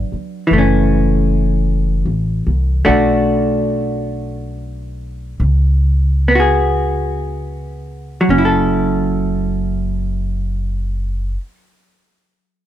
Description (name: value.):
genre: jazz ballad.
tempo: 39-53 BPM.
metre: 4/4.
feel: swing 66% on 8ths.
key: F# minor.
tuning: A4 = 438 Hz.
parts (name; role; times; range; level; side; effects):
vintage hollow-body jazz guitar; accompaniment; 0.0-11.5 s; E3 to A4; -16 LUFS; equal; none.
upright bass; bass; 0.0-11.3 s; F#1 to C#2; -18 LUFS; equal; none.
room: little or no reverb.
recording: dry, close 1970s-style studio recording.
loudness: -14 LUFS.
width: side -11 dB against mid.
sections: 0.0-8.3 A section; 8.3-12.7 B section.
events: slowing down 0.0-8.3.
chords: 0.0 G#m7b5 (rootless); 0.5 F#m7; 2.9 Bm7; 5.4 C#7sus4; 8.3 F#m7.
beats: 0.51 1.66 | 2.86 4.10 5.41 6.79 | 8.28 9.81 11.34.